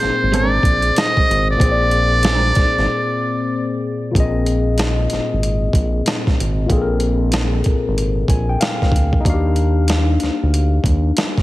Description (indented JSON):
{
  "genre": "R&B, neo-soul",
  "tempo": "94 BPM",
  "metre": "4/4",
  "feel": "swing 63% on 16ths",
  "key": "unclear",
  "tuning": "A4 = 442 Hz",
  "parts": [
    { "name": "trumpet with metal mute", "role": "melody", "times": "0.0-3.8 s", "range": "C5 to Eb5", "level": "-18 LUFS", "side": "right 1 dB", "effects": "none" },
    { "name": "barky tine electric piano", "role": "accompaniment", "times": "0.0-11.4 s", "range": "Bb2 to Ab5", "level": "-21 LUFS", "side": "left 3 dB", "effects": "overdrive, phaser" },
    { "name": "round analog bass", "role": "bass", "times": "0.0-11.1 s", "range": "Ab1 to Eb2", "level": "-18 LUFS", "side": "equal", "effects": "none" },
    { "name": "boom bap sampler-style drum kit", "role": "drums", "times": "0.0-11.4 s", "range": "hi-hat, kick drum, snare drum", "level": "-18 LUFS", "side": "equal", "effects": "none" },
    { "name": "electric guitar through a small old amp", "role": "second line", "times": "0.3-2.5 s", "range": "Ab3 to Bb4", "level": "-25 LUFS", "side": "right 4 dB", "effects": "tremolo" }
  ],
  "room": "light reverb",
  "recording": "heavily compressed radio sound",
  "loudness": "-14 LUFS",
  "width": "side -17 dB against mid",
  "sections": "0.0-4.1 A section; 4.1-11.4 B section",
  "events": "break 2.9-4.1; tine electric piano fill 8.0-9.3",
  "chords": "0.0 Bb9; 4.1 Bb9sus4; 9.3 Ebmaj9"
}